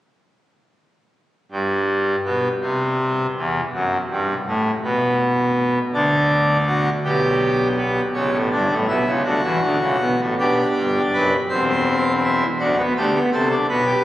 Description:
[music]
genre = classical, baroque-style 4-part fugue for pipe organ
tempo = 54 BPM (dotted quarters)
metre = 6/8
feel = straight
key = G major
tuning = A4 = 439 Hz
[part]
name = pipe organ, full organ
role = solo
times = 1.5-14.0 s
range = D1 to C5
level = -17 LUFS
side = equal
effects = none
[sound]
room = wet cathedral reverb, RT60 6.2 s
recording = recorded on a phone in the room, studio reverb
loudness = -17 LUFS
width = side -14 dB against mid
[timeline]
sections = 1.5-10.4 A section; 10.4-14.0 B section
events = none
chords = 1.5 N.C.; 6.0 D; 7.0 G/B; 8.2 A7; 9.3 D; 10.4 G; 11.5 C/E; 12.6 D7

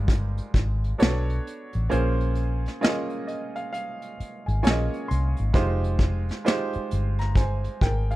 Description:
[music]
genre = R&B, neo-soul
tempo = 66 BPM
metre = 4/4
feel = swing 62% on 16ths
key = F minor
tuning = A4 = 441 Hz
[part]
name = clear baby grand piano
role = accompaniment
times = 0.0-8.2 s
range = G3 to C6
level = -29 LUFS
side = right 2 dB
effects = none
[part]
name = vintage muted fingered electric bass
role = bass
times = 0.0-8.2 s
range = F1 to C2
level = -24 LUFS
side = equal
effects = none
[part]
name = vintage brush drum kit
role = drums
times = 0.1-8.2 s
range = hi-hat, kick drum, snare drum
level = -22 LUFS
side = equal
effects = none
[sound]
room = little or no reverb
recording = dark, warm production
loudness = -23 LUFS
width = side -17 dB against mid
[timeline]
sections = 0.0-8.2 A section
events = kick muted 1.9-5.5; grand piano fill 2.8-5.5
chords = 0.0 Fm9; 1.0 Bm9; 1.9 Bbm9; 5.5 Fm9

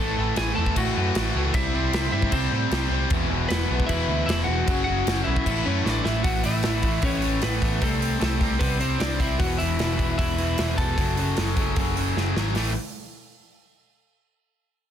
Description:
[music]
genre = punk rock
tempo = 153 BPM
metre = 4/4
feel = straight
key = unclear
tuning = A4 = 441 Hz
[part]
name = lightly driven lead guitar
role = melody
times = 0.0-12.1 s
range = A3 to A5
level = -28 LUFS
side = left 1 dB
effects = digital delay
[part]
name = cranked stack guitar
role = riff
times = 0.0-12.7 s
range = E2 to C4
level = -29 LUFS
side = left 16 dB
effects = overdrive
[part]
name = distorted electric guitar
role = riff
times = 0.0-12.7 s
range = E2 to C4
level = -30 LUFS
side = right 15 dB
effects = distortion
[part]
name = overdriven picked electric bass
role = bass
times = 0.0-12.7 s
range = E1 to A2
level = -27 LUFS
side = equal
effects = none
[part]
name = big rock drum kit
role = drums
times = 0.4-12.7 s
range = crash cymbal, hi-hat, kick drum, snare drum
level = -27 LUFS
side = equal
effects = none
[sound]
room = little or no reverb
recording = dense, heavily limited modern master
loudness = -21 LUFS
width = side -9 dB against mid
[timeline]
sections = 0.0-6.2 A section; 6.2-12.6 B section; 12.6-14.1 C section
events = drum fill 5.9-6.2, 12.2-12.6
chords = 0.0 A5; 1.5 C; 3.1 E5; 4.7 F#5; 5.5 A; 7.8 C; 9.4 E5; 11.0 F#m; 12.6 A5

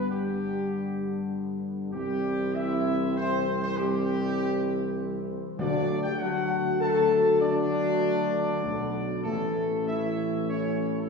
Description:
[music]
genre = classical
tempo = 99 BPM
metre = 3/4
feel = straight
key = unclear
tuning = A4 = 442 Hz
[part]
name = dark trumpet section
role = melody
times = 0.0-11.1 s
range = G4 to A5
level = -31 LUFS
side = right 1 dB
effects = none
[part]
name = bright trombone section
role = sustained chords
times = 0.0-11.1 s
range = D3 to C#4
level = -33 LUFS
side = right 1 dB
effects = none
[part]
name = mellow French horn section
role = sustained chords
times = 0.0-11.1 s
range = G3 to A4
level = -30 LUFS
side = left 3 dB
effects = none
[part]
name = mellow tuba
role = bass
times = 0.0-11.1 s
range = A1 to G2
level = -30 LUFS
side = left 1 dB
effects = none
[part]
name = timpani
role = percussion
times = 5.6-6.5 s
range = D3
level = -34 LUFS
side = left 5 dB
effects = none
[sound]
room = wet recital hall reverb, RT60 1.7 s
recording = heard from further back in the room, small room ambience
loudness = -25 LUFS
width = side -4 dB against mid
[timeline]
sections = 0.0-11.1 A section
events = none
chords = 0.0 G; 1.9 C; 5.6 D; 9.2 A

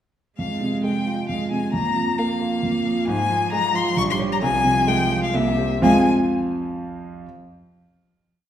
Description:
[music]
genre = quick classical-period movement for piano trio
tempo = 132 BPM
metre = 3/4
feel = uneven beats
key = F minor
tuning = A4 = 440 Hz
[part]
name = rich violin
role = melody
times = 0.4-6.1 s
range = E5 to Db6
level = -23 LUFS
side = left 5 dB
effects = none
[part]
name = rich cello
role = second line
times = 0.4-6.1 s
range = F3 to Bb3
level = -25 LUFS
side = right 4 dB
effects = none
[part]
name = warm concert grand piano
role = accompaniment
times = 0.4-7.3 s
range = Bb1 to F5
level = -22 LUFS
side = equal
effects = none
[sound]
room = wet recital hall reverb, RT60 1.3 s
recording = heard from further back in the room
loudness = -19 LUFS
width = side -10 dB against mid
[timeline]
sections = 0.4-5.8 A section; 5.8-7.2 final chord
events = none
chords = 0.4 Fm; 1.7 Bb5/F; 3.1 Fm/Ab; 4.0 Gdim/Bb; 4.4 Fm/C; 5.3 C7; 5.8 Fm

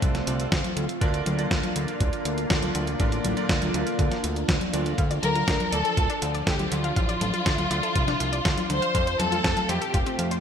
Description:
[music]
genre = italo disco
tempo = 121 BPM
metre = 4/4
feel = straight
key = D minor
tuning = A4 = 440 Hz
[part]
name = string machine, full ensemble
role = sustained chords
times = 0.0-10.4 s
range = F3 to F4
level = -31 LUFS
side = equal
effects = ensemble chorus
[part]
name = clear electric grand piano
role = stabs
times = 0.0-5.0 s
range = D3 to D5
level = -32 LUFS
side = right 3 dB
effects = wide subtle chorus, digital delay
[part]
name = fat analog bass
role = bass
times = 0.0-10.4 s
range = D1 to F2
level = -29 LUFS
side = equal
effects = none
[part]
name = clean 12-bit digital drum machine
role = drums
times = 0.0-10.4 s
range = congas, hi-hat, snare drum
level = -28 LUFS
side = equal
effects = none
[part]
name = electronic kick drum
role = drums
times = 0.0-10.0 s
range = none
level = -26 LUFS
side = equal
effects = overdrive
[part]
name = analog pluck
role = arpeggios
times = 5.0-10.4 s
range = C4 to F5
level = -34 LUFS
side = left 4 dB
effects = chorus, digital delay
[part]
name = warm symphonic violin section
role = melody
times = 5.2-10.2 s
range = F4 to C5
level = -26 LUFS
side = left 1 dB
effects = ping-pong delay
[sound]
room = moderate lush hall reverb, RT60 1.7 s, digital ambience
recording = bright 1980s-style digital production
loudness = -22 LUFS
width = side -8 dB against mid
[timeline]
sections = 0.0-10.4 A section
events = none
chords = 0.0 Dm; 1.0 Bb/D; 5.0 Dm; 8.9 F

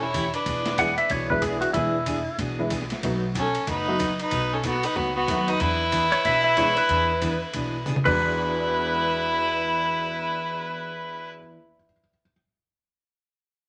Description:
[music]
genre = country, western swing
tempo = 186 BPM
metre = 4/4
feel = swing 61% on 8ths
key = E mixolydian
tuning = A4 = 440 Hz
[part]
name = clear fiddle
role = melody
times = 0.0-1.3, 3.4-11.3 s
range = B3 to E4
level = -28 LUFS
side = equal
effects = none
[part]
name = clear fiddle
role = second line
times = 0.0-1.3, 3.4-11.3 s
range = F#4 to C#5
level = -33 LUFS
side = equal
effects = none
[part]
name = picked steel-string acoustic guitar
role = accompaniment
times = 0.0-11.6 s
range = B2 to G#4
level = -36 LUFS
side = equal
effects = none
[part]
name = upright bass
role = bass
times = 0.0-11.3 s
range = E1 to E2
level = -36 LUFS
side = equal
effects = none
[part]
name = boom bap sampler-style drum kit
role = drums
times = 0.1-8.1 s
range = crash cymbal, hi-hat, kick drum, ride cymbal, snare drum, toms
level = -36 LUFS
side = equal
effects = overdrive
[part]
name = clean lap steel guitar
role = second line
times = 0.8-2.4, 6.1-11.3 s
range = E4 to F#5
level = -28 LUFS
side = equal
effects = none
[part]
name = honky-tonk upright piano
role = accompaniment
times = 0.8-12.3 s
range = E2 to B6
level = -33 LUFS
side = equal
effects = none
[sound]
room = moderate studio reverb, RT60 0.7 s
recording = none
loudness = -24 LUFS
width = mono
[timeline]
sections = 0.0-8.2 A section; 8.2-10.8 B section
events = drum fill 7.9-8.2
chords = 0.5 E7; 3.0 B7; 5.6 E7

